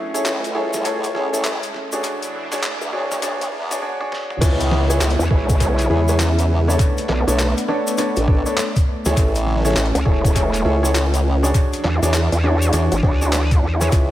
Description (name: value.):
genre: glitch hop.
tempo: 101 BPM.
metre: 4/4.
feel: swing 63% on 16ths.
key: unclear.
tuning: A4 = 440 Hz.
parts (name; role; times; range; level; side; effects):
warm analog pad; sustained chords; 0.0-14.1 s; C#3 to E4; -26 LUFS; equal; chorus, sidechain pumping.
warm grand piano; stabs; 0.0-14.1 s; D4 to C#5; -23 LUFS; equal; sidechain pumping, analog delay.
riser and downlifter; sound effects; 0.0-9.2 s; none; -33 LUFS; equal; none.
boom bap sampler-style drum kit; drums; 0.1-14.1 s; crash cymbal, handclaps, hi-hat, snare drum, toms; -27 LUFS; equal; analog delay.
tube shaker; percussion; 0.2-14.1 s; none; -31 LUFS; left 2 dB; none.
formant-sweep wobble bass; bass; 0.3-14.1 s; A1 to E2; -19 LUFS; equal; chorus, high-pass filter.
electronic kick drum; drums; 4.4-14.1 s; none; -17 LUFS; equal; none.
vowel-sweep wobble bass; bass; 5.2-13.9 s; E1 to E2; -19 LUFS; equal; chorus.
room: light reverb.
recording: echo-heavy mix, high-pass filter.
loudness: -16 LUFS.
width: side -14 dB against mid.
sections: 0.0-4.4 A section; 4.4-14.1 B section.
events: build-up 0.0-4.4; riser 0.0-3.8; drum fill 4.0-4.4; drop 4.4-14.1.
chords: 0.0 Amaj7; 2.0 E13; 4.4 C#m7; 6.8 Bm9; 9.2 Amaj7; 11.5 E13.